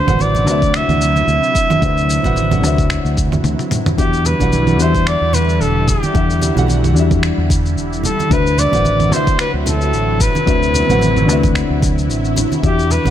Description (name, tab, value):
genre	sunset chillout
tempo	111 BPM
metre	4/4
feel	swing 56% on 16ths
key	unclear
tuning	A4 = 436 Hz
part	clear flugelhorn	melody	0.0-13.1 s	G4 to E5	-18 LUFS	equal	digital delay
part	dark concert grand piano	accompaniment	0.0-13.1 s	D3 to F#5	-20 LUFS	moving between left 8 dB and right 2 dB	auto-pan, digital delay
part	lush unison pad	sustained chords	0.0-13.1 s	C3 to E4	-23 LUFS	equal	chorus, phaser
part	fingered electric bass	bass	0.1-13.1 s	E1 to E2	-17 LUFS	equal	none
part	dusty soul sampler-style drum kit	drums	0.1-13.1 s	congas, finger snaps, shaker, toms	-22 LUFS	right 2 dB	none
part	electronic kick drum	drums	0.1-13.1 s	none	-18 LUFS	equal	none
part	congas	percussion	0.1-13.1 s	none	-24 LUFS	right 3 dB	none
room	light reverb, studio ambience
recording	none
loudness	-12 LUFS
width	side -10 dB against mid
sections	0.0-4.0 A section; 4.0-13.1 B section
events	drum fill 3.4-4.0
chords	0.0 D13; 4.0 Em7; 8.3 D13